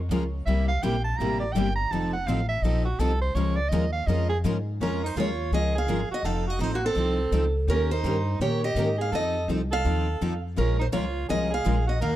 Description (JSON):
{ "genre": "acoustic string swing (jazz manouche)", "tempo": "166 BPM", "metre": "4/4", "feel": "swing 63% on 8ths", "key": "Bb minor", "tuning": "A4 = 440 Hz", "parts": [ { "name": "upright bass", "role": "bass", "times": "0.0-12.2 s", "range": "F1 to Bb2", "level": "-27 LUFS", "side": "equal", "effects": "none" }, { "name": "picked steel-string acoustic guitar", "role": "accompaniment", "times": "0.1-12.2 s", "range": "C3 to Bb4", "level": "-30 LUFS", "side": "left 5 dB", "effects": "none" }, { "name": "picked steel-string acoustic guitar", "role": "accompaniment", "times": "0.1-12.2 s", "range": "C3 to Bb4", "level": "-33 LUFS", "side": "right 4 dB", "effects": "none" }, { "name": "breathy soprano saxophone", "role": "second line", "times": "0.5-12.2 s", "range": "Bb3 to Bb5", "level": "-31 LUFS", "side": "right 4 dB", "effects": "none" }, { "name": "picked steel-string acoustic guitar", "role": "melody", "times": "4.8-12.2 s", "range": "Gb4 to F5", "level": "-29 LUFS", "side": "right 2 dB", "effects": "none" } ], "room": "small room ambience", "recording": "dry, close 1970s-style studio recording", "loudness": "-23 LUFS", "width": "side -13 dB against mid", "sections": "0.0-4.8 A section; 4.8-12.2 B section", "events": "soprano saxophone solo 0.0-4.8", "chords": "0.5 C7; 1.9 F7; 3.4 Bbm7; 6.2 F7; 7.7 Eb7; 9.1 F7; 10.6 Bbm7", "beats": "0.12 | 0.47 0.84 1.20 1.56 | 1.92 2.28 2.64 3.00 | 3.36 3.72 4.08 4.44 | 4.80 5.16 5.52 5.88 | 6.24 6.60 6.96 7.33 | 7.68 8.05 8.41 8.77 | 9.13 9.49 9.85 10.21 | 10.57 10.93 11.29 11.65 | 12.01" }